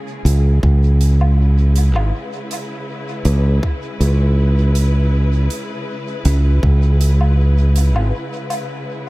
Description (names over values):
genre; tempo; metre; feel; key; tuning
ambient dub; 80 BPM; 4/4; swing 54% on 16ths; C# minor; A4 = 440 Hz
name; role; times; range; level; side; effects
warm studio string section; sustained chords; 0.0-9.1 s; C#3 to B4; -27 LUFS; left 1 dB; none
modern bright fingered electric bass; bass; 0.2-8.1 s; G#1 to C#2; -12 LUFS; equal; none
hi-hat and woodblock; drums; 0.3-8.7 s; none; -29 LUFS; equal; dub echo
electronic kick drum; drums; 0.6-6.8 s; none; -19 LUFS; equal; none
room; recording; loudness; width
studio reverb; none; -13 LUFS; side -20 dB against mid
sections
0.0-9.1 A section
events
fade-in on string section 0.0-9.1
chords
0.0 C#m7